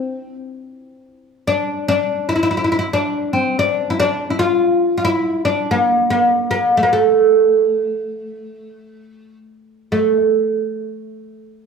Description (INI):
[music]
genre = arabic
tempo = 114 BPM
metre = 4/4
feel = straight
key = A maqam bayati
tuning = A4 = 440 Hz
[part]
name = oud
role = solo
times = 0.0-10.2 s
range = A3 to F4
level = -15 LUFS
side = right 1 dB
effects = none
[sound]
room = wet large studio reverb, RT60 1.2 s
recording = band playing live in one room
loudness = -15 LUFS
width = side -5 dB against mid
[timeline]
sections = 0.0-9.9 A section; 9.9-11.7 B section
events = none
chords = none